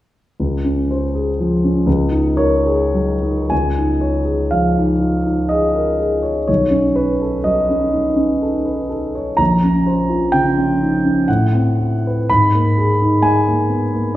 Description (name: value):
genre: classical, impressionist solo piano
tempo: 49-65 BPM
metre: 3/4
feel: rubato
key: unclear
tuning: A4 = 441 Hz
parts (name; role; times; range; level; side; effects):
- clear grand piano; solo; 0.4-14.2 s; Bb1 to Cb6; -14 LUFS; equal; none
room: wet recital hall reverb, RT60 1.6 s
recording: recorded in a church or concert hall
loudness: -14 LUFS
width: side -14 dB against mid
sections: 0.4-3.5 A section; 3.5-14.2 B section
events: none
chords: 0.4 Dbmaj7; 1.9 Ab9sus4/Db; 3.5 Dbadd9; 6.5 Cb9; 9.4 Bbmadd9; 11.3 Amadd9; 12.3 Abmadd9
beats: | 0.39 1.38 2.37 | 3.51 4.52 5.50 | 6.48 7.46 8.44 | 9.40 10.33 11.28 | 12.28 13.23